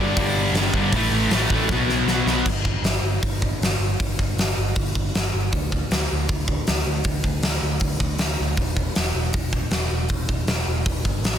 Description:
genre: punk rock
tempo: 157 BPM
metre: 4/4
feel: straight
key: unclear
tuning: A4 = 439 Hz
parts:
  - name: distorted electric guitar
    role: riff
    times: 0.0-2.5 s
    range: G2 to B3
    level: -20 LUFS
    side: left 1 dB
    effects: distortion
  - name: picked electric bass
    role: bass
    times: 0.0-11.4 s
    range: E1 to D2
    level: -25 LUFS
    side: equal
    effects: none
  - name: big rock drum kit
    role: drums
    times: 0.2-11.3 s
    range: crash cymbal, hi-hat, kick drum, snare drum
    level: -23 LUFS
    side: equal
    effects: none
room: little or no reverb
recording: dense, heavily limited modern master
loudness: -20 LUFS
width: side -9 dB against mid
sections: 0.0-2.5 A section; 2.5-11.4 B section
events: drum fill 1.7-2.5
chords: 0.0 G5; 0.9 A5; 1.7 B5; 2.5 N.C.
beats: 0.17 0.55 | 0.93 1.31 1.70 2.08 | 2.46 2.84 3.22 3.60 | 3.99 4.37 4.75 5.13 | 5.52 5.90 6.28 6.67 | 7.05 7.43 7.81 8.19 | 8.58 8.96 9.34 9.72 | 10.10 10.48 10.86 11.24

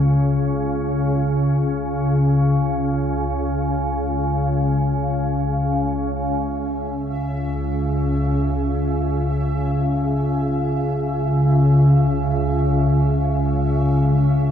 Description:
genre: dark ambient drone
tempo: free time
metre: none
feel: none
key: C# minor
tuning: A4 = 445 Hz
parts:
  - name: organ-like drone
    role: drone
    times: 0.0-14.5 s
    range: C#2 to C#3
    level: -18 LUFS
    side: equal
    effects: ensemble chorus, built-in reverb
  - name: bubbling stepped-filter texture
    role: texture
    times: 6.5-14.5 s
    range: E5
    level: -35 LUFS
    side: right 4 dB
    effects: chorus, built-in reverb, shimmer reverb
room: wet cathedral reverb, RT60 7.3 s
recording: in a vast, echoing space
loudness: -18 LUFS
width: side -9 dB against mid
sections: 0.0-6.2 A section; 6.2-14.5 B section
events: none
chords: 0.0 N.C.; 6.2 C#m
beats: free time

